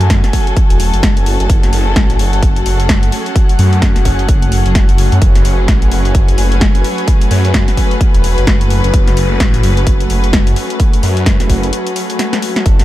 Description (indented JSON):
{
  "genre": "bass house",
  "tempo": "129 BPM",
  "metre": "4/4",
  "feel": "swing 59% on 16ths",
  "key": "F# minor",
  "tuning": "A4 = 442 Hz",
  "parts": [
    { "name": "rich studio string section", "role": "sustained chords", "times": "0.0-12.8 s", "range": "F#3 to B4", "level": "-21 LUFS", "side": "left 3 dB", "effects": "sidechain pumping" },
    { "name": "phased detuned saw bass", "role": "bass", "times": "0.0-12.8 s", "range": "E1 to F#2", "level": "-13 LUFS", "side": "equal", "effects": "phaser, tube saturation, sidechain pumping" },
    { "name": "house drum kit", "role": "drums", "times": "0.0-12.8 s", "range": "hi-hat, snare drum", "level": "-19 LUFS", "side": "left 1 dB", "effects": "none" },
    { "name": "airy breathy pad", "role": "texture", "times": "0.0-12.8 s", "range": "A3 to G#5", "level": "-21 LUFS", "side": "equal", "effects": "chorus, sidechain pumping" },
    { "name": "electronic kick drum", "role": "drums", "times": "0.1-12.8 s", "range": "none", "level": "-11 LUFS", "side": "equal", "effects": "none" }
  ],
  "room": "little or no reverb",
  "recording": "dark, warm production",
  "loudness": "-10 LUFS",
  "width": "side -15 dB against mid",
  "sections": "0.0-12.8 A section",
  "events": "break 11.7-12.7; drum fill 12.2-12.7",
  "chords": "0.0 F#madd9"
}